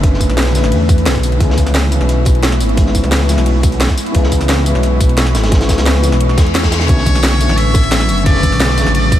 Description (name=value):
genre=liquid drum and bass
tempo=175 BPM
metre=4/4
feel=straight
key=unclear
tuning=A4 = 444 Hz
part: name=felt-muted upright piano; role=accompaniment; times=0.0-9.2 s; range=C#3 to C#4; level=-19 LUFS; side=left 2 dB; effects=vintage 12-bit sampler grit, analog delay
part: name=ethereal airy pad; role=sustained chords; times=0.0-9.2 s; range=D3 to C#6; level=-21 LUFS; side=equal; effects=ensemble chorus, built-in reverb, sidechain pumping
part: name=dark detuned saw bass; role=bass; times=0.0-9.2 s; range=F#1 to E2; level=-14 LUFS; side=equal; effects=none
part: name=crunchy breakbeat drum kit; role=drums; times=0.0-9.2 s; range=hi-hat, snare drum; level=-23 LUFS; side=equal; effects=high-pass filter on hats, small room reverb, high-pass filter on snare, high-pass filter on room
part: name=electronic kick drum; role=drums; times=0.0-9.2 s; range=none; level=-13 LUFS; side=equal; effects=small room reverb
part: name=garage drum kit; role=drums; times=0.0-9.2 s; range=hi-hat, snare drum, tambourine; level=-19 LUFS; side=equal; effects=small room reverb
part: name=reverse cymbal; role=sound effects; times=6.3-6.9 s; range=none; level=-28 LUFS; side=left 5 dB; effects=none
part: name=trumpet with metal mute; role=melody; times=6.9-9.2 s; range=C#5 to E5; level=-18 LUFS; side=equal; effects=diffuse ambient delay
part: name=congas and bongos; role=percussion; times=7.1-8.9 s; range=none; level=-26 LUFS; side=right 1 dB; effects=none
room=light reverb, small room ambience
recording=none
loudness=-10 LUFS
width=side -12 dB against mid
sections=0.0-9.2 A section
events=reverse cymbal 6.3-6.9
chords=0.0 Bm9; 1.4 C#m7; 6.9 Bm9